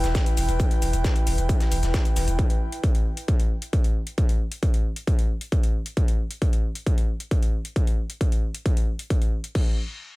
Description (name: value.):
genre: driving peak-time techno.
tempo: 134 BPM.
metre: 4/4.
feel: straight.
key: E minor.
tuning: A4 = 441 Hz.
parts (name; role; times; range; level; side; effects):
warm sub bass; bass; 0.0-2.4 s; E1; -24 LUFS; equal; tube saturation, sidechain pumping, low-pass filter.
breakbeat sampler-style drum kit; drums; 0.0-2.3 s; hi-hat, snare drum; -37 LUFS; equal; sidechain pumping on hats, high-pass filter on hats, small room ambience, high-pass filter on snare.
techno drum kit; drums; 0.0-9.6 s; crash cymbal, hi-hat, shaker; -36 LUFS; left 2 dB; sidechain pumping on hats, small room ambience, sidechain pumping on cymbals, sidechain pumping on perc.
airy breathy pad; texture; 0.0-2.4 s; E4 to G5; -30 LUFS; equal; chorus, sidechain pumping.
electronic kick drum; drums; 0.1-9.6 s; none; -22 LUFS; equal; distortion, small room ambience.
room: little or no reverb.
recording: none.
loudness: -21 LUFS.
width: side -21 dB against mid.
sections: 0.0-9.6 A section.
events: none.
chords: 0.0 Em; 9.6 N.C..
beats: 0.15 | 0.60 1.04 1.49 1.94 | 2.39 2.83 3.28 3.73 | 4.18 4.63 5.07 5.52 | 5.97 6.42 6.87 7.31 | 7.76 8.21 8.66 9.10 | 9.55.